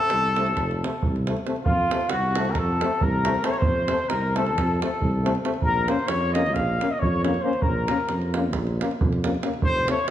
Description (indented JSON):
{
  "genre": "balkan folk, Balkan brass band",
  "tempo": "271 BPM (eighths)",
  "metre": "9/8",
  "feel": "straight",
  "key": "F phrygian dominant",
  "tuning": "A4 = 440 Hz",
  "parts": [
    { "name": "mellow cornet", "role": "melody", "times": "0.0-10.1 s", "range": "F4 to F5", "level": "-26 LUFS", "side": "equal", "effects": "none" },
    { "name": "warm flugelhorn", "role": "second line", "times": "0.0-10.1 s", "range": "F4 to F5", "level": "-29 LUFS", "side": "left 3 dB", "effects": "none" },
    { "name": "mellow tuba", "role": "bass", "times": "0.1-9.9 s", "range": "F1 to F2", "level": "-27 LUFS", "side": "equal", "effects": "none" },
    { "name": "davul", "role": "percussion", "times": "0.1-10.1 s", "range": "none", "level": "-27 LUFS", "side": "right 2 dB", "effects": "none" },
    { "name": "brilliant trombone", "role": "accompaniment", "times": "0.4-10.0 s", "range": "A3 to Bb3", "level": "-33 LUFS", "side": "right 2 dB", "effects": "none" },
    { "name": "mellow euphonium", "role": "accompaniment", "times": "0.4-10.0 s", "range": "C4 to Db4", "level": "-31 LUFS", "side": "left 6 dB", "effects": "none" }
  ],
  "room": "wet recital hall reverb, RT60 1.8 s",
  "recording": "none",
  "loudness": "-21 LUFS",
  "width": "side -11 dB against mid",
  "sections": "0.0-1.7 A section; 1.7-10.1 A section",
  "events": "none",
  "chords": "0.0 F; 5.6 Bbm"
}